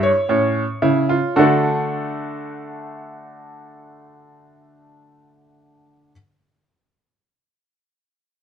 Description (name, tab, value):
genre	classical, baroque-style 3-part fugue for grand piano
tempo	54 BPM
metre	4/4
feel	straight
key	unclear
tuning	A4 = 440 Hz
part	clear baby grand piano	solo	0.0-6.1 s	A2 to C#5	-17 LUFS	right 1 dB	none
room	light reverb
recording	close, detailed microphones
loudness	-16 LUFS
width	side -8 dB against mid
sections	0.0-1.4 A section; 1.4-5.8 B section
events	slowing down 0.0-1.4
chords	0.0 A; 1.4 D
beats	0.30 | 1.38 2.49 3.61 4.73